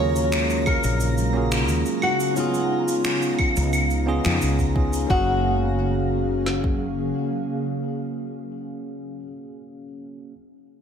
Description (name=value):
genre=sunset chillout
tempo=88 BPM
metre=4/4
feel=straight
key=F# major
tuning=A4 = 440 Hz
part: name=flamenco guitar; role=melody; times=0.0-9.2 s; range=E#4 to C#5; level=-26 LUFS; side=left 1 dB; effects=digital delay, slapback echo
part: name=bell-like tine electric piano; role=accompaniment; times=0.0-10.3 s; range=A#3 to E#5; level=-27 LUFS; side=moving between left 4 dB and right 3 dB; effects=auto-pan, ping-pong delay, slapback echo
part: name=ethereal airy pad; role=sustained chords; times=0.0-8.6 s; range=C#3 to E#5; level=-29 LUFS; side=right 1 dB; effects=ensemble chorus, built-in reverb
part: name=woody fretless electric bass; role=bass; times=0.0-7.1 s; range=F#1 to E#2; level=-24 LUFS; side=equal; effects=none
part: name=twinkling granular texture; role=texture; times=0.0-5.1 s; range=A#5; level=-39 LUFS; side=right 1 dB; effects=built-in reverb
part: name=electronic shaker, finger snaps and claves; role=drums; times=0.2-5.1 s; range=none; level=-27 LUFS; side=equal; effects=none
part: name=smooth R&B drum kit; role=drums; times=0.7-6.8 s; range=kick drum, snare drum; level=-25 LUFS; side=equal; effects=none
room=wet lush hall reverb, RT60 2.8 s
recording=big arena sound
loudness=-20 LUFS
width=side -7 dB against mid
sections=0.0-5.1 A section; 5.1-7.8 B section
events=none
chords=0.0 D#m11; 2.4 C#9; 5.1 F#maj9